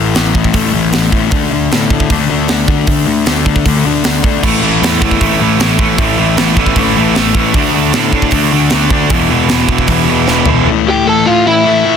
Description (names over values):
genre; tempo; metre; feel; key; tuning
punk rock; 154 BPM; 4/4; straight; unclear; A4 = 440 Hz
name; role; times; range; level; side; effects
sludgy distorted guitar; riff; 0.0-12.0 s; E2 to D4; -14 LUFS; left 12 dB; overdrive
fuzz picked electric bass; bass; 0.0-10.7 s; E1 to A2; -16 LUFS; right 1 dB; overdrive
tight metal drum kit; drums; 0.1-10.6 s; crash cymbal, hi-hat, kick drum, snare drum, toms; -15 LUFS; right 1 dB; none
tight distorted guitar; riff; 4.4-10.7 s; E2 to D4; -14 LUFS; right 14 dB; distortion
overdriven semi-hollow guitar; melody; 10.9-12.0 s; E4 to A5; -10 LUFS; right 2 dB; none
room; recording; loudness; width
light reverb; dense, heavily limited modern master; -9 LUFS; side -7 dB against mid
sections
0.0-10.7 A section; 10.7-12.0 B section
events
drum fill 10.3-10.7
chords
0.0 A5; 1.3 D5; 4.4 A5; 7.6 D5; 9.1 E5; 10.7 A5